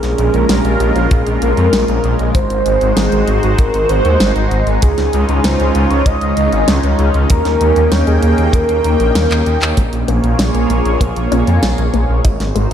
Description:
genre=synthwave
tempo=97 BPM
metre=4/4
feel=straight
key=Bb minor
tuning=A4 = 440 Hz
part: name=warm velvety synth lead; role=melody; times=0.0-9.5 s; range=F4 to Eb5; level=-18 LUFS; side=right 1 dB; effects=chorus, analog delay
part: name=lush unison pad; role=sustained chords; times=0.0-12.7 s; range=Ab3 to G5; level=-18 LUFS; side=equal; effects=chorus, phaser, sidechain pumping
part: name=wide detuned saw bass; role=bass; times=0.0-12.7 s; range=Ab1 to F2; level=-15 LUFS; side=equal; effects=chorus, sidechain pumping
part: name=pop drum kit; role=drums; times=0.0-12.7 s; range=handclaps, hi-hat, snare drum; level=-20 LUFS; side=equal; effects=none
part: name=kick drum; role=drums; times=1.1-12.4 s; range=none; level=-13 LUFS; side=equal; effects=none
part: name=analog pluck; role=arpeggios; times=9.8-12.7 s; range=Ab3 to Eb4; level=-23 LUFS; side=left 4 dB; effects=chorus, analog delay
room=moderate plate reverb, RT60 2.0 s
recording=dreamy mix soaked in reverb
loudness=-11 LUFS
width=side -9 dB against mid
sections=0.0-9.8 A section; 9.8-12.7 B section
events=drum fill 9.3-9.8; filter sweep on synth arpeggio sound 9.8-12.7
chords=0.0 Bbm7; 2.3 Ab7; 4.8 Dbadd9; 7.3 Eb7; 9.8 Bbm7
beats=0.49 1.11 1.73 | 2.35 2.97 3.59 4.21 | 4.82 5.44 6.06 6.68 | 7.30 7.92 8.54 9.15 | 9.77 10.39 11.01 11.63 | 12.25

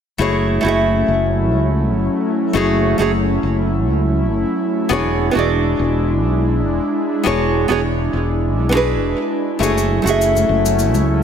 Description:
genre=sunset chillout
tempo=102 BPM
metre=4/4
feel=straight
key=F# minor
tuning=A4 = 440 Hz
part: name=nylon-string guitar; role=accompaniment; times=0.2-11.2 s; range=A3 to E5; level=-18 LUFS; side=moving between left 4 dB and right 4 dB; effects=auto-pan, digital delay
part: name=airy breathy pad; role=sustained chords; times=0.5-11.2 s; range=F#3 to E4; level=-20 LUFS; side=equal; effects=chorus
part: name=fretless electric bass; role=bass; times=0.2-11.2 s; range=E1 to C#2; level=-19 LUFS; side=equal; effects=tube saturation
part: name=cabasa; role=drums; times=9.6-11.1 s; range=none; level=-28 LUFS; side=left 4 dB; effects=none
part: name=congas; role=percussion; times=10.4-11.1 s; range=none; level=-25 LUFS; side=left 4 dB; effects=none
room=moderate lush hall reverb, RT60 2.1 s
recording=none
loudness=-15 LUFS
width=side -8 dB against mid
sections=0.2-11.2 A section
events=none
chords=0.2 F#m7; 4.9 E13; 9.6 F#m7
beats=| 0.20 0.79 1.38 1.97 | 2.56 3.15 3.73 4.32 | 4.91 5.50 6.09 6.67 | 7.26 7.85 8.44 9.03 | 9.62 10.20 10.79

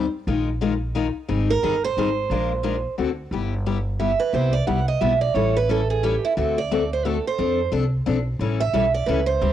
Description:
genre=acoustic string swing (jazz manouche)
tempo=177 BPM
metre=3/4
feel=swing 61% on 8ths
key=G major from 3.3 s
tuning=A4 = 439 Hz
part: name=picked steel-string acoustic guitar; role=accompaniment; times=0.0-9.5 s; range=C3 to Bb4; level=-25 LUFS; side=left 7 dB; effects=cassette tape
part: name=upright bass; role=bass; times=0.0-9.5 s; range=G1 to F2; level=-25 LUFS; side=equal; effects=none
part: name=picked steel-string acoustic guitar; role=melody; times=1.5-9.5 s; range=E4 to F#5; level=-22 LUFS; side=right 6 dB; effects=cassette tape
room=studio reverb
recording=home recording on cassette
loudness=-20 LUFS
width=side -11 dB against mid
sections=0.0-3.3 A section; 3.3-9.5 B section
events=steel-string acoustic guitar solo 3.3-9.5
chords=0.3 Bb7sus4; 1.3 Abmaj7; 2.3 Bb7; 3.0 D7; 3.3 G6; 4.3 Cmaj7; 5.4 A7; 6.4 D7; 7.4 F6; 8.4 A7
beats=| 0.28 0.61 0.95 | 1.29 1.63 1.97 | 2.31 2.64 2.98 | 3.32 3.66 4.00 | 4.33 4.67 5.01 | 5.35 5.69 6.03 | 6.37 6.71 7.04 | 7.38 7.72 8.06 | 8.40 8.73 9.07 | 9.41

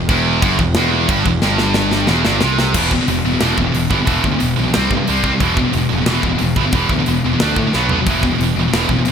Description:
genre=heavy metal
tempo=181 BPM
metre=4/4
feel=straight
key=E minor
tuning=A4 = 442 Hz
part: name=heavy high-gain guitar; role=riff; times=0.0-9.1 s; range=E2 to D4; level=-18 LUFS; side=right 12 dB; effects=distortion
part: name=scooped high-gain guitar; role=riff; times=0.0-9.1 s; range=E2 to D4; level=-18 LUFS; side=left 9 dB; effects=distortion
part: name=fuzz picked electric bass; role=bass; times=0.0-9.1 s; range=E1 to A2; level=-20 LUFS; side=equal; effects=overdrive
part: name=tight metal drum kit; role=drums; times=0.1-9.1 s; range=crash cymbal, hi-hat, kick drum, snare drum, toms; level=-20 LUFS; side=equal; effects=gated reverb
room=moderate plate reverb, RT60 1.4 s, small room ambience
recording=bright 1980s-style digital production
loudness=-13 LUFS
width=side -7 dB against mid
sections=0.0-2.8 A section; 2.8-9.1 B section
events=drum fill 1.4-2.8, 7.7-8.1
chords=0.0 Em; 2.8 E5; 4.7 C5; 5.4 E5; 7.4 D5; 7.7 B5; 8.1 E5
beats=| 0.10 0.43 0.77 1.10 | 1.43 1.76 2.09 2.42 | 2.76 3.09 3.42 3.75 | 4.08 4.42 4.75 5.08 | 5.41 5.74 6.08 6.41 | 6.74 7.07 7.40 7.73 | 8.06 8.40 8.73 9.06

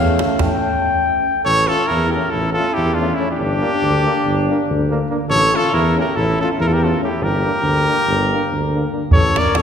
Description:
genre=balkan folk, Balkan brass band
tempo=282 BPM (eighths)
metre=9/8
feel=straight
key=A phrygian dominant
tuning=A4 = 440 Hz
part: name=mellow flugelhorn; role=second line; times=0.0-9.6 s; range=C#4 to G5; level=-21 LUFS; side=left 3 dB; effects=none
part: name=bright trombone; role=accompaniment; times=0.0-9.4 s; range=A3 to Bb3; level=-29 LUFS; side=right 4 dB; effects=none
part: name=warm euphonium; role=accompaniment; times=0.0-9.4 s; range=C#4 to D4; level=-26 LUFS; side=left 1 dB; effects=none
part: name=mellow tuba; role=bass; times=0.0-9.6 s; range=G1 to E2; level=-20 LUFS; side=equal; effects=none
part: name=davul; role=percussion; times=0.1-0.5, 9.1-9.6 s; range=none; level=-18 LUFS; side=right 1 dB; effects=none
part: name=warm trumpet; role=melody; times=1.5-9.6 s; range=E4 to D5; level=-19 LUFS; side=equal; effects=none
room=wet concert hall reverb, RT60 2.4 s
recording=heard from further back in the room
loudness=-15 LUFS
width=side -7 dB against mid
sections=0.0-1.4 A section; 1.4-9.6 B section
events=flugelhorn solo 0.0-1.4; break 0.5-1.4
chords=0.0 A; 3.4 Gm; 5.3 A; 7.2 Gm; 9.1 A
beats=0.16 0.37 0.59 0.80 1.02 1.23 | 1.44 1.66 1.87 2.08 2.30 2.51 2.73 2.94 3.15 | 3.37 3.58 3.79 4.00 4.22 4.43 4.64 4.86 5.07 | 5.28 5.50 5.71 5.92 6.14 6.35 6.56 6.78 6.99 | 7.20 7.41 7.63 7.84 8.05 8.27 8.48 8.69 8.90 | 9.12 9.33 9.54

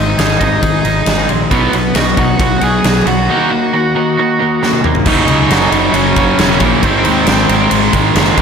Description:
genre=quiet-loud alternative rock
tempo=135 BPM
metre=4/4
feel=straight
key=F# major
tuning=A4 = 441 Hz
part: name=dark smooth lead guitar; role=melody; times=0.0-7.7 s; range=A#3 to G#5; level=-17 LUFS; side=equal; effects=overdrive, slapback echo
part: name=twangy electric guitar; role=arpeggios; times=0.0-5.1 s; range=G#2 to G#4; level=-19 LUFS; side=right 6 dB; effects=phaser, slapback echo
part: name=sludgy distorted guitar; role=riff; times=0.0-8.4 s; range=F#2 to D#4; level=-17 LUFS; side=left 9 dB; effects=overdrive
part: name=fuzz fingered electric bass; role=bass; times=0.0-8.4 s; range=E1 to D#2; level=-18 LUFS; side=equal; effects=overdrive
part: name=huge arena drum kit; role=drums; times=0.2-8.4 s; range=crash cymbal, kick drum, ride cymbal, snare drum, toms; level=-16 LUFS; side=equal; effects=none
part: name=overdriven electric guitar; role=riff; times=1.5-8.4 s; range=F#2 to D#4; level=-16 LUFS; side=right 10 dB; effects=slapback echo
part: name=crunchy overdriven guitar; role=riff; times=5.1-8.4 s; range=F#2 to G#3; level=-19 LUFS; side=left 2 dB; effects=none
room=moderate lush hall reverb, RT60 2.0 s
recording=big arena sound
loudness=-10 LUFS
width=side -6 dB against mid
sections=0.0-5.1 A section; 5.1-8.4 B section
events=drum fill 4.6-5.1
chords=0.0 G#; 1.5 B; 3.3 D#m; 5.1 F#; 6.8 G#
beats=0.18 0.63 1.07 | 1.51 1.96 2.40 2.85 | 3.29 3.73 4.18 4.62 | 5.06 5.50 5.95 6.39 | 6.83 7.27 7.71 8.16

